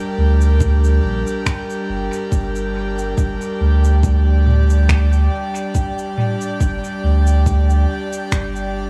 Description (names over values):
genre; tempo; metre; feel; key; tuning
ambient dub; 70 BPM; 4/4; swing 55% on 16ths; G minor; A4 = 437 Hz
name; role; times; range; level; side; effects
airy breathy pad; sustained chords; 0.0-8.9 s; G3 to D5; -26 LUFS; equal; chorus
bubbling stepped-filter texture; texture; 0.0-8.9 s; G5; -32 LUFS; equal; chorus, built-in reverb
warm sub bass; bass; 0.2-8.9 s; G1 to D2; -17 LUFS; equal; tube saturation
organic electronic drum kit; drums; 0.4-8.7 s; finger snaps, shaker, toms; -28 LUFS; equal; dub echo
electronic kick drum; drums; 0.6-8.5 s; none; -21 LUFS; equal; none
room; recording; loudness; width
little or no reverb; small room ambience; -17 LUFS; mono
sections
0.0-8.9 A section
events
none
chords
0.0 Gm